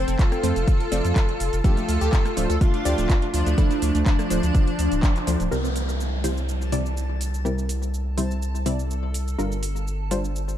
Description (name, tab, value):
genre	progressive house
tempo	124 BPM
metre	4/4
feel	straight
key	unclear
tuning	A4 = 440 Hz
part	soft supersaw	melody	0.0-5.4 s	F3 to C5	-28 LUFS	equal	tape echo
part	airy dreamy lead	second line	0.0-5.4 s	D4 to C5	-30 LUFS	equal	chorus, sidechain pumping
part	glassy wavetable pluck	arpeggios	0.0-4.3 s	A3 to A4	-30 LUFS	right 2 dB	chorus, sidechain pumping, ping-pong delay
part	wide unison pluck	stabs	0.0-10.6 s	G2 to D5	-29 LUFS	left 2 dB	sidechain pumping, ping-pong delay
part	saturated sub bass	bass	0.0-10.6 s	D1 to F2	-25 LUFS	equal	sidechain pumping
part	pop drum kit	drums	0.1-10.6 s	handclaps, hi-hat, rim click, shaker	-33 LUFS	right 1 dB	studio reverb
part	electronic kick drum	drums	0.2-5.1 s	none	-20 LUFS	equal	studio reverb
part	downlifter	sound effects	5.5-9.4 s	none	-34 LUFS	right 3 dB	none
part	backwards swelling texture	texture	6.5-10.6 s	A4 to A5	-40 LUFS	equal	built-in reverb, sidechain pumping
room	little or no reverb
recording	dark, warm production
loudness	-20 LUFS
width	side -11 dB against mid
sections	0.0-5.5 A section; 5.5-10.6 B section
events	drop 0.0-5.5; band accent 5.0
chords	0.0 F; 1.6 Dm; 5.5 C7; 9.4 Gm7